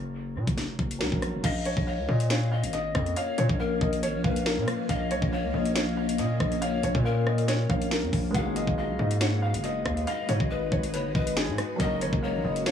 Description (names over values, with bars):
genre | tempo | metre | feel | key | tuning
hip hop, drill | 139 BPM | 4/4 | half-time | Bb phrygian | A4 = 439 Hz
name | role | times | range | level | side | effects
dark baby grand piano | accompaniment | 0.0-1.5, 8.3-12.7 s | Gb3 to Bb4 | -35 LUFS | right 2 dB | dub echo
distorted 808-style bass | bass | 0.0-12.7 s | F1 to Bb2 | -29 LUFS | equal | distortion
drill drum kit | drums | 0.5-12.7 s | crash cymbal, hi-hat, kick drum, rim click, snare drum | -30 LUFS | equal | vintage 12-bit sampler grit, dub echo
dark upright piano | melody | 1.4-12.7 s | Ab4 to Gb5 | -33 LUFS | equal | dub echo
breathy mellow pan flute | second line | 1.4-12.7 s | Bb4 to Gb5 | -33 LUFS | left 6 dB | dub echo
granular cloud pad | sustained chords | 2.1-12.7 s | Ab3 to Cb5 | -33 LUFS | left 1 dB | built-in reverb
room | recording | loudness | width
light reverb, small room ambience | echo-heavy mix | -24 LUFS | side -8 dB against mid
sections
0.0-1.4 A section; 1.4-12.7 B section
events
none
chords
0.0 Gb; 1.4 Bbm; 8.3 Abm7; 11.8 Gb